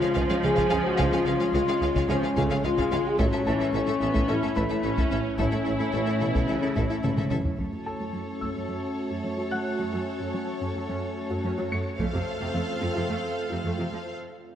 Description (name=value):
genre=cinematic, hybrid orchestral and electronic film score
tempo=109 BPM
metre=4/4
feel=straight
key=F# minor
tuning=A4 = 438 Hz
part: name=rich symphonic violin section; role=second line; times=0.0-14.2 s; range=G#4 to E#5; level=-35 LUFS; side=left 3 dB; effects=none
part: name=rich symphonic viola section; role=accompaniment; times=0.0-14.2 s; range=C3 to A4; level=-33 LUFS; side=right 2 dB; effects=low-pass filter
part: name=dark French horn section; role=sustained chords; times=0.0-7.0 s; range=C#4 to G#4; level=-27 LUFS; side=left 4 dB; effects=low-pass filter
part: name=warbly tape-like pad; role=sustained chords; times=0.0-14.2 s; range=G#3 to F5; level=-32 LUFS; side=equal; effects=chorus, built-in reverb, low-pass filter
part: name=soft round pluck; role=arpeggios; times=0.0-14.0 s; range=C#3 to A4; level=-36 LUFS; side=left 1 dB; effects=chorus, low-pass filter, tape echo
part: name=clear symphonic cello section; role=bass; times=0.0-14.0 s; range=F2 to C#3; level=-33 LUFS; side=right 2 dB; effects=none
part: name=bright grand piano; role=texture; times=0.0-14.6 s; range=G#4 to C#7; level=-38 LUFS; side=left 1 dB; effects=tape echo
part: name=clear tuba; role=bass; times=0.2-7.4 s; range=A1 to C#2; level=-35 LUFS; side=right 3 dB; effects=none
part: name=rich symphonic double bass section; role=bass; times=0.2-7.4 s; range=A1 to C#2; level=-34 LUFS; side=right 2 dB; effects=none
part: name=taiko ensemble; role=drums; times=0.2-8.7, 12.0-13.1 s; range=none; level=-31 LUFS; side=equal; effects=none
part: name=cymbal swell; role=sound effects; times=14.5-14.6 s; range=none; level=-61 LUFS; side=right 1 dB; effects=none
room=wet scoring stage reverb, RT60 1.8 s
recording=none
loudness=-24 LUFS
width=side -10 dB against mid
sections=0.0-7.6 A section; 7.6-14.6 B section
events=drum fill 7.0-7.6; filter sweep 7.6-14.6; break 14.2-14.6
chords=0.0 C#; 3.2 A; 7.6 F#m; 12.0 F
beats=0.44 | 0.99 1.54 2.09 2.64 | 3.19 3.74 4.29 4.84 | 5.39 5.94 6.49 7.04 | 7.59 8.14 8.69 9.24 | 9.79 10.35 10.90 11.45 | 12.00 12.55 13.10 13.65 | 14.20